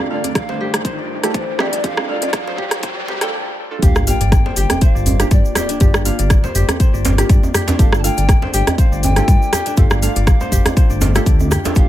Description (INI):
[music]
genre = afro house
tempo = 121 BPM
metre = 4/4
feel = swing 55% on 16ths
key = G minor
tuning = A4 = 440 Hz
[part]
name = mellow hollow polished pan flute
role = melody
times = 0.0-11.9 s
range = C5 to A5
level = -26 LUFS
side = left 2 dB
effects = ping-pong delay
[part]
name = warm analog pad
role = sustained chords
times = 0.0-11.9 s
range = G2 to D5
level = -29 LUFS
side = left 3 dB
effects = chorus, sidechain pumping
[part]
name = kora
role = arpeggios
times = 0.0-11.9 s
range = D4 to G5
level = -26 LUFS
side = left 2 dB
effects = sidechain pumping, ping-pong delay
[part]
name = deep mellow chord stab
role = stabs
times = 0.0-11.9 s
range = A3 to A4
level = -26 LUFS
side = right 4 dB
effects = chorus, sidechain pumping, ping-pong delay
[part]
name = riser and sub drop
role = sound effects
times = 0.1-5.8 s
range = none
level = -26 LUFS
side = equal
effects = none
[part]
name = afro-pop drum kit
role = drums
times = 0.2-11.9 s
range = hi-hat, rim click, toms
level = -21 LUFS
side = equal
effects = none
[part]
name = djembe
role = percussion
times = 0.2-11.7 s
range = none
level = -23 LUFS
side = right 2 dB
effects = none
[part]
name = electronic kick drum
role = drums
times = 0.4-11.9 s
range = none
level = -13 LUFS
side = equal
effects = none
[part]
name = dark detuned saw bass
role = bass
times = 3.8-11.9 s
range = G1 to G2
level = -18 LUFS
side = equal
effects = sidechain pumping
[part]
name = tube shaker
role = percussion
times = 3.8-11.9 s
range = none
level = -31 LUFS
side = right 3 dB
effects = none
[sound]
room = small room ambience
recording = high-pass filter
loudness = -13 LUFS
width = side -13 dB against mid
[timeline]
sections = 0.0-3.8 A section; 3.8-11.9 B section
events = build-up 0.0-3.8; riser 0.1-3.3; break 3.3-3.8; drop 3.8-11.9; impact 3.8-5.8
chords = 0.0 Dm/G; 3.8 Gm7; 7.8 Dm/G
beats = 0.35 0.85 1.35 | 1.84 2.34 2.83 3.33 | 3.83 4.32 4.82 5.31 | 5.81 6.30 6.80 7.30 | 7.79 8.29 8.78 9.28 | 9.78 10.27 10.77 11.26 | 11.76